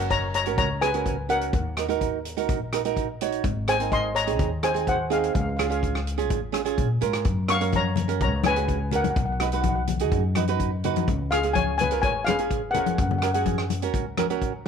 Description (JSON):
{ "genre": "calypso", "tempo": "126 BPM", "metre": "4/4", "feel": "straight", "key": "F# major", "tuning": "A4 = 443 Hz", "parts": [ { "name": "steel pan", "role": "melody", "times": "0.0-13.4 s", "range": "G#4 to C#6", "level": "-25 LUFS", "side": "left 4 dB", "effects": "none" }, { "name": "flamenco guitar", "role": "accompaniment", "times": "0.0-14.5 s", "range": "B#3 to C#5", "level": "-28 LUFS", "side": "right 12 dB", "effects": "none" }, { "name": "upright bass", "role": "bass", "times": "0.0-14.7 s", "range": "F#1 to A#2", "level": "-28 LUFS", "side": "left 1 dB", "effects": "none" }, { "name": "natural country drum kit", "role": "drums", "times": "0.1-14.7 s", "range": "hi-hat, kick drum, rim click, snare drum", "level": "-30 LUFS", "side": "left 1 dB", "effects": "none" }, { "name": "congas", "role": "percussion", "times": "7.7-14.3 s", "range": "none", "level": "-29 LUFS", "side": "left 13 dB", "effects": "none" } ], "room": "moderate spring reverb, RT60 1.2 s", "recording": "1960s-style stereo with parts hard left and right", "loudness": "-22 LUFS", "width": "side -7 dB against mid", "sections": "0.0-14.7 A section", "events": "none", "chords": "0.0 F#; 1.5 D#m; 3.4 G#; 5.3 C#; 7.3 F#; 9.2 B; 11.1 C#; 13.0 F#" }